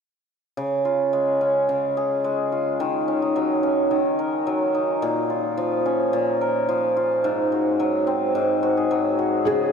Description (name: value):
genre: folktronica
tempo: 108 BPM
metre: 4/4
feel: straight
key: Db major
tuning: A4 = 440 Hz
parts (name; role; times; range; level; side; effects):
- hammered dulcimer; arpeggios; 0.6-9.7 s; Ab2 to Bb4; -20 LUFS; equal; analog delay
- felt-muted upright piano; melody; 9.5-9.7 s; Ab4; -20 LUFS; left 1 dB; ensemble chorus
room: wet huge ambient reverb, RT60 7.7 s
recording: dreamy mix soaked in reverb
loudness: -20 LUFS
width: side -6 dB against mid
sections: 0.6-9.5 A section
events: none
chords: 0.6 Db; 2.8 Ebm7; 5.0 Bbm; 7.2 Ab7